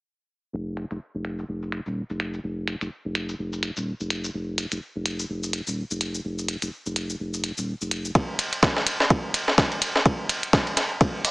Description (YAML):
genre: minimal techno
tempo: 126 BPM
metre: 4/4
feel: swing 58% on 16ths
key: unclear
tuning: A4 = 440 Hz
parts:
  - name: saturated sub bass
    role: bass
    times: 0.5-8.1 s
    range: Eb1 to F1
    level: -31 LUFS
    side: equal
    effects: tube saturation, sidechain pumping
  - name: electronic hi-hat and shaker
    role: drums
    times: 0.8-11.3 s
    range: none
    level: -28 LUFS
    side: equal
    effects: high-pass filter on hats, low-pass filter on hats, high-pass filter on perc, low-pass filter on perc, high-pass filter on room, low-pass filter on room
  - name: breakbeat sampler-style drum kit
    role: drums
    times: 8.2-11.3 s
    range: hi-hat, ride cymbal, snare drum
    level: -28 LUFS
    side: equal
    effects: sidechain pumping on cymbals, high-pass filter on cymbals, high-pass filter on snare, sidechain pumping on hats, high-pass filter on hats
  - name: electronic kick drum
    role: drums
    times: 8.2-11.1 s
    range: none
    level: -23 LUFS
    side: equal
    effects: none
room: little or no reverb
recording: small speaker sound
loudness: -24 LUFS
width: side -23 dB against mid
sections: 0.5-8.2 A section; 8.2-11.3 B section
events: build-up 8.2-11.3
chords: none